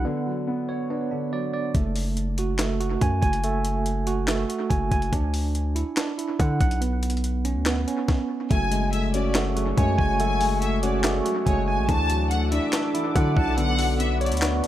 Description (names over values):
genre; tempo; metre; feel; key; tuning
hip hop, trap; 142 BPM; 4/4; half-time; F# minor; A4 = 440 Hz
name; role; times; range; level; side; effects
dark grand piano; accompaniment; 0.0-1.8, 8.5-14.7 s; D3 to C#5; -29 LUFS; left 6 dB; none
tine electric piano; arpeggios; 0.0-14.7 s; A3 to G#5; -27 LUFS; right 4 dB; medium tremolo, analog delay
distorted 808-style bass; bass; 0.0-14.6 s; F#1 to D3; -25 LUFS; equal; distortion
breakbeat sampler-style drum kit; drums; 1.7-14.7 s; handclaps, hi-hat, kick drum, snare drum; -26 LUFS; equal; analog delay
rich studio violin section; second line; 8.5-14.4 s; C#5 to A5; -29 LUFS; left 2 dB; analog delay
deep dark ambient pad; sustained chords; 9.5-14.7 s; D4 to D6; -33 LUFS; left 2 dB; chorus, built-in reverb
room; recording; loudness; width
light reverb; echo-heavy mix; -21 LUFS; side -12 dB against mid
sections
0.0-8.5 A section; 8.5-14.7 B section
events
break 0.0-1.7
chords
0.1 Bmadd9; 1.7 F#madd9; 5.1 Dadd9; 6.8 Bmadd9; 8.5 F#madd9; 11.9 Dadd9; 13.6 Bmadd9